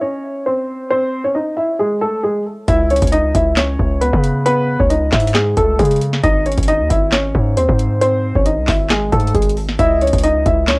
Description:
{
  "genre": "hip hop, trap",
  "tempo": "135 BPM",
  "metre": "4/4",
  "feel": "half-time",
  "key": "C# minor",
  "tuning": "A4 = 440 Hz",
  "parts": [
    { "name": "dark grand piano", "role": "melody", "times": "0.0-10.8 s", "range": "G#3 to E5", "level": "-16 LUFS", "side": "equal", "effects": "low-pass filter" },
    { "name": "hard-hitting 808-style bass", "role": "bass", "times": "2.7-10.8 s", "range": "G#1 to C#3", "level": "-17 LUFS", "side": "equal", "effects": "none" },
    { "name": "booming analog drum machine", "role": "drums", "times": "2.7-10.8 s", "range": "handclaps, hi-hat, kick drum, snare drum", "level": "-18 LUFS", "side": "equal", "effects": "overdrive, cassette tape" },
    { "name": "soft octave-layered synth lead", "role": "second line", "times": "9.8-10.2 s", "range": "D#5", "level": "-26 LUFS", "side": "equal", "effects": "none" }
  ],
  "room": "light reverb",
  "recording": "home recording on cassette",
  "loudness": "-13 LUFS",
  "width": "side -30 dB against mid",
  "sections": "0.0-2.7 A section; 2.7-10.8 B section",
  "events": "none",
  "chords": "0.0 G#; 2.7 C#m; 6.2 G#; 9.8 C#m",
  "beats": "0.01 0.46 | 0.90 1.35 1.79 2.24 | 2.68 3.12 3.57 4.01 | 4.46 4.90 5.35 5.79 | 6.24 6.68 7.12 7.57 | 8.01 8.46 8.90 9.35 | 9.79 10.24 10.68"
}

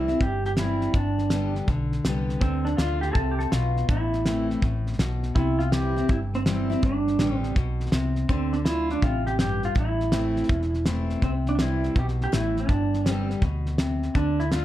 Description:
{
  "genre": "honky-tonk and classic country",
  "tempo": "164 BPM",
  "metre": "4/4",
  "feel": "swing 66% on 8ths",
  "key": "C major",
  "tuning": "A4 = 440 Hz",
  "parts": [
    { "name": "pedal steel guitar", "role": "melody", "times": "0.0-14.6 s", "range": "C4 to A4", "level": "-27 LUFS", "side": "right 2 dB", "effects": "none" },
    { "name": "picked steel-string acoustic guitar", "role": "accompaniment", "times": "0.0-14.6 s", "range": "E2 to G4", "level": "-29 LUFS", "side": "left 4 dB", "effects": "none" },
    { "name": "hollow-body short-scale fingered electric bass", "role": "bass", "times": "0.0-14.6 s", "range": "E1 to D2", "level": "-27 LUFS", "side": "equal", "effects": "none" },
    { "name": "cloth-damped thuddy drum kit", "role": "drums", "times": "0.1-14.6 s", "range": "hi-hat, kick drum, snare drum", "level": "-26 LUFS", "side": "equal", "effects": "none" }
  ],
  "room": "light reverb",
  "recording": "dark, warm production",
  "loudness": "-22 LUFS",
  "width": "side -13 dB against mid",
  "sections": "0.0-14.6 A section",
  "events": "none",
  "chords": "0.0 C; 0.9 G; 2.4 Dm; 3.9 Am; 5.4 C; 6.8 G; 8.3 Dm; 9.8 Am; 11.2 C; 12.7 G",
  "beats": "0.21 0.58 | 0.95 1.31 1.68 2.05 | 2.42 2.78 3.15 3.52 | 3.89 4.25 4.62 4.99 | 5.36 5.72 6.09 6.46 | 6.82 7.19 7.56 7.92 | 8.29 8.66 9.02 9.39 | 9.76 10.12 10.49 10.86 | 11.22 11.59 11.96 12.32 | 12.69 13.05 13.42 13.79 | 14.15 14.52"
}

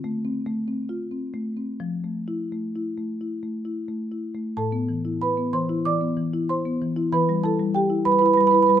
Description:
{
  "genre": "classical, contemporary piece for solo marimba",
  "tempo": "85-98 BPM",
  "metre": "4/4",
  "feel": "rubato",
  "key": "A minor",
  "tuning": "A4 = 440 Hz",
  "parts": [
    { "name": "marimba with medium mallets", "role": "solo", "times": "0.0-8.8 s", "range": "A2 to D6", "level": "-21 LUFS", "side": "right 1 dB", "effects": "none" }
  ],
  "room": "light reverb",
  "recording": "close, detailed microphones",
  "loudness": "-22 LUFS",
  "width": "side -9 dB against mid",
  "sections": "0.0-4.6 A section; 4.6-8.8 B section",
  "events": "none",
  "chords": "0.0 Dm7; 1.8 Fmaj7; 4.6 Amadd9; 7.1 Em",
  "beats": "0.47 1.13 | 1.81 2.52 3.21 3.88 | 4.55 5.20 5.85 6.50 | 7.13 7.75 8.37"
}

